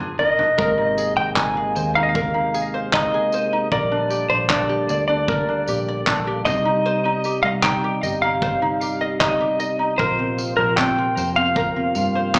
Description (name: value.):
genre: acoustic pop.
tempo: 76 BPM.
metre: 4/4.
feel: straight.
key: unclear.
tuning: A4 = 440 Hz.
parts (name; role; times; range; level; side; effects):
clean lap steel guitar; melody; 0.0-12.4 s; Bb4 to Ab5; -20 LUFS; equal; digital delay.
ukulele; accompaniment; 0.0-12.4 s; C4 to Eb5; -24 LUFS; equal; slapback echo.
natural country drum kit; drums; 0.2-12.4 s; handclaps, kick drum, tambourine, toms; -23 LUFS; equal; none.
percussive tonewheel organ; sustained chords; 0.6-12.4 s; C3 to Eb4; -28 LUFS; equal; overdrive, slow rotary speaker.
vintage muted fingered electric bass; bass; 0.6-12.4 s; G1 to G2; -28 LUFS; equal; none.
room: moderate club reverb, RT60 0.8 s.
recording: live gig heard through the venue's PA, club reverb, small speaker sound.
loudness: -17 LUFS.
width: side -29 dB against mid.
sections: 0.6-12.4 A section.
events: drum fill 0.0-0.6.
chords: 0.0 Gm7; 0.6 Abadd9; 3.7 Gm/Bb; 6.5 Cm; 10.0 Bbsus2.